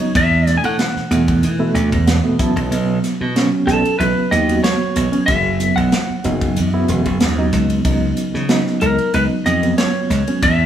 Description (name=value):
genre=electric jazz fusion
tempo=93 BPM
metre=4/4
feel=swing 53% on 16ths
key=unclear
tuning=A4 = 440 Hz
part: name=lightly driven lead guitar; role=melody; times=0.0-10.7 s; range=A4 to Ab5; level=-20 LUFS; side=equal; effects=none
part: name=barky reed electric piano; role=accompaniment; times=0.0-10.4 s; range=B2 to A5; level=-19 LUFS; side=right 2 dB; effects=overdrive, fast tremolo
part: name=glassy slap bass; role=bass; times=0.0-10.7 s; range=Fb1 to E3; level=-18 LUFS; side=right 1 dB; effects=none
part: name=crisp fusion drum kit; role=drums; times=0.0-10.6 s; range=hi-hat, kick drum, ride cymbal, snare drum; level=-22 LUFS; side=equal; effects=none
room=moderate studio reverb, RT60 0.9 s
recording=band playing live in one room, small room ambience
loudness=-14 LUFS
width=side -10 dB against mid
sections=0.0-10.7 A section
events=reed electric piano fill 1.4-2.7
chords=0.1 E9sus4; 2.4 Cbsus24; 5.3 Gb7sus4; 7.8 Db9sus4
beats=| 0.15 0.79 1.43 2.07 | 2.71 3.35 4.00 4.64 | 5.28 5.92 6.56 7.21 | 7.85 8.49 9.14 9.78 | 10.43